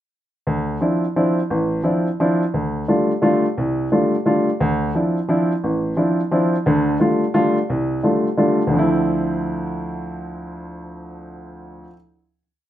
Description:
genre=jazz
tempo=174 BPM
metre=3/4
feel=swing 63% on 8ths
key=D minor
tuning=A4 = 440 Hz
part: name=warm baby grand piano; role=solo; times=0.5-11.9 s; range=A1 to F4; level=-18 LUFS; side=equal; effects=none
room=moderate studio reverb, RT60 0.7 s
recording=band playing live in one room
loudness=-17 LUFS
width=side -12 dB against mid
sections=0.5-8.7 A section; 8.7-10.8 final chord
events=none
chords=0.5 Dm9; 2.5 Fadd9/D; 4.6 Dm9; 6.7 Fadd9/D; 8.7 Dm9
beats=| 0.46 0.81 1.15 | 1.49 1.84 2.18 | 2.52 2.87 3.21 | 3.56 3.90 4.24 | 4.59 4.93 5.28 | 5.62 5.97 6.31 | 6.66 7.00 7.34 | 7.69 8.03 8.38 | 8.72 9.06 9.41 | 9.75 10.10 10.44

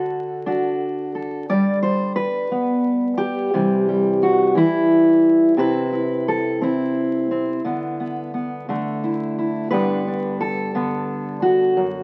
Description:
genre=folk, solo fingerstyle acoustic guitar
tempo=58 BPM (dotted quarters)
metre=6/8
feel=rubato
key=G major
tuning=A4 = 440 Hz
part: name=fingerpicked steel-string acoustic guitar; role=solo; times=0.0-12.0 s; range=F#2 to D5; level=-20 LUFS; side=equal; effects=none
room=moderate studio reverb, RT60 0.7 s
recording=very old 78 rpm record, vinyl crackle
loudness=-20 LUFS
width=mono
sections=0.0-9.7 A section; 9.7-12.0 A section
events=none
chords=0.0 D; 1.5 G; 3.5 C; 5.6 Cmaj7; 7.6 Bmadd11/D; 8.7 Dsus2; 9.7 Gadd9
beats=0.45 | 1.48 2.51 | 3.53 4.55 | 5.57 6.60 | 7.63 8.68 | 9.71 10.75 | 11.77

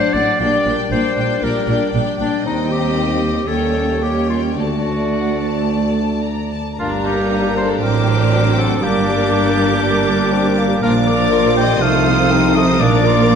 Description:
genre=classical, dramatic, fast romantic movement for symphony orchestra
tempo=107-123 BPM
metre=4/4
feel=rubato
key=G minor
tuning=A4 = 439 Hz
part: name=rich symphonic violin section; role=melody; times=0.0-13.4 s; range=F#5 to Eb6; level=-26 LUFS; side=left 5 dB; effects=none
part: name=bright clarinet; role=second line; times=0.0-13.4 s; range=C4 to D5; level=-23 LUFS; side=left 2 dB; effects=none
part: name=rich chamber violin section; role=second line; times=0.0-13.4 s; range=D4 to Eb5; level=-25 LUFS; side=left 4 dB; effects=none
part: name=warm symphonic viola section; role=accompaniment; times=0.0-13.4 s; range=F3 to C5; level=-24 LUFS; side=right 2 dB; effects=none
part: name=mellow French horn section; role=sustained chords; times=0.0-13.4 s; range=F#3 to Eb4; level=-23 LUFS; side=left 4 dB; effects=none
part: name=concert harp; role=arpeggios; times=0.0-13.4 s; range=G2 to Eb5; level=-26 LUFS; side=left 5 dB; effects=none
part: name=rich studio double bass section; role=bass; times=0.1-13.4 s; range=G1 to Eb2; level=-22 LUFS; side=right 5 dB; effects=none
part: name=rich symphonic cello section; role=bass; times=0.1-13.4 s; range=D2 to C3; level=-21 LUFS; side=right 3 dB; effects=none
part: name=warm oboe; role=second line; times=6.8-13.4 s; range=F4 to G5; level=-21 LUFS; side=right 2 dB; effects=none
part: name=mellow bassoon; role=accompaniment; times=6.8-13.4 s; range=F3 to D4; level=-24 LUFS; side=right 2 dB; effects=none
room=wet scoring stage reverb, RT60 1.5 s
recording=none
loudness=-14 LUFS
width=side -7 dB against mid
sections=0.0-6.8 A section; 6.8-13.4 B section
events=none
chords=0.4 Gm/Bb; 2.5 Cm/Eb; 3.5 Eb7; 4.6 D; 6.8 Gm; 7.8 D7/A; 8.8 Gm; 10.8 Bb; 11.8 F7/C; 12.8 Bb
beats=| 0.41 0.92 1.43 1.94 | 2.46 2.98 3.50 4.03 | 4.57 5.13 5.70 6.25 | 6.80 7.31 7.82 8.33 | 8.82 9.32 9.82 10.32 | 10.82 11.32 11.82 12.31 | 12.81 13.30

